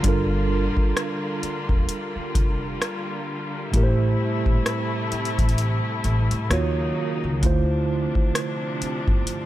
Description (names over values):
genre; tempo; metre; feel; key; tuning
contemporary R&B; 65 BPM; 4/4; swing 58% on 16ths; unclear; A4 = 439 Hz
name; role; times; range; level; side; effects
mellow tine electric piano; accompaniment; 0.0-9.5 s; A2 to Db5; -26 LUFS; right 3 dB; slow stereo tremolo
rich studio string section; sustained chords; 0.0-9.5 s; C3 to F4; -30 LUFS; left 3 dB; sidechain pumping
upright bass; bass; 0.0-9.2 s; E1 to A2; -25 LUFS; equal; none
booming analog drum machine; drums; 0.0-9.5 s; hi-hat, kick drum, rim click; -23 LUFS; equal; none
room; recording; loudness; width
light reverb, studio reverb; none; -21 LUFS; side -14 dB against mid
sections
0.0-9.5 A section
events
kick muted 5.6-7.4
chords
0.0 Gm7; 3.7 Am7; 6.5 Ebm7; 7.4 Dm7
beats
| 0.04 0.97 1.89 2.81 | 3.74 4.66 5.58 6.50 | 7.43 8.35 9.27